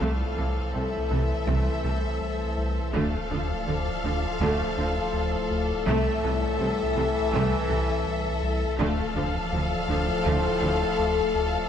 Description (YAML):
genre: cinematic, hybrid orchestral and electronic film score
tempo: 82 BPM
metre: 4/4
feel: straight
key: A minor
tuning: A4 = 439 Hz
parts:
  - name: warm symphonic violin section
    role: melody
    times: 0.0-11.7 s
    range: E5 to F5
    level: -34 LUFS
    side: left 3 dB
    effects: none
  - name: rich studio violin section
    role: second line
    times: 0.0-11.7 s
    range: A4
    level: -34 LUFS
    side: left 3 dB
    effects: none
  - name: clear symphonic viola section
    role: accompaniment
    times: 0.0-10.7 s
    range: C3 to A3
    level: -34 LUFS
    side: left 1 dB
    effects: none
  - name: bright trombone section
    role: sustained chords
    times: 0.0-11.7 s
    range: A2 to F3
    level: -34 LUFS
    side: right 3 dB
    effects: none
  - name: mellow French horn section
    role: sustained chords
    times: 0.0-11.7 s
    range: A3 to A4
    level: -31 LUFS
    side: left 7 dB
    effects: none
  - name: metallic inharmonic drone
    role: sustained chords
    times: 0.0-11.7 s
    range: E3 to E5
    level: -34 LUFS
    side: left 1 dB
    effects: chorus, built-in reverb
  - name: string-like resonator pluck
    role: arpeggios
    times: 0.0-10.8 s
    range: D3 to A4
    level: -40 LUFS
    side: right 3 dB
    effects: none
  - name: round analog bass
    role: riff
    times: 0.0-11.6 s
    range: C2 to D2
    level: -31 LUFS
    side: left 1 dB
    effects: none
  - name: clear studio double bass section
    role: bass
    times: 0.0-10.7 s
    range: C2 to D2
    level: -33 LUFS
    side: right 3 dB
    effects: none
  - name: punchy sub bass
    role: bass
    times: 0.0-11.7 s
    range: D1 to C2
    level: -33 LUFS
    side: right 1 dB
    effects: none
  - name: rich symphonic cello section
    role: bass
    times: 0.0-10.7 s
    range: C3 to D3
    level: -33 LUFS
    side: right 3 dB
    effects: none
room: moderate scoring stage reverb, RT60 1.8 s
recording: dark, warm production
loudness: -23 LUFS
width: side -9 dB against mid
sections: 0.0-11.7 A section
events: none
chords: 0.0 Am/C; 2.9 Dm; 5.9 Am/C; 8.8 Dm